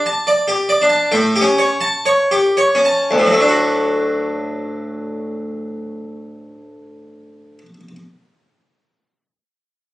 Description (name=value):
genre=classical, baroque-style suite movement for harpsichord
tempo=55-74 BPM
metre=4/4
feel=rubato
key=D major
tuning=A4 = 442 Hz
part: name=harpsichord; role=solo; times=0.0-8.0 s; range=D2 to A5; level=-15 LUFS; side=equal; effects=none
room=moderate studio reverb, RT60 0.7 s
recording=recorded on a phone in the room, studio ambience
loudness=-14 LUFS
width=side -16 dB against mid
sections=0.0-3.1 A section; 3.1-7.2 B section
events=slowing down 0.0-3.1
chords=0.0 A7sus4; 1.1 A7; 3.1 D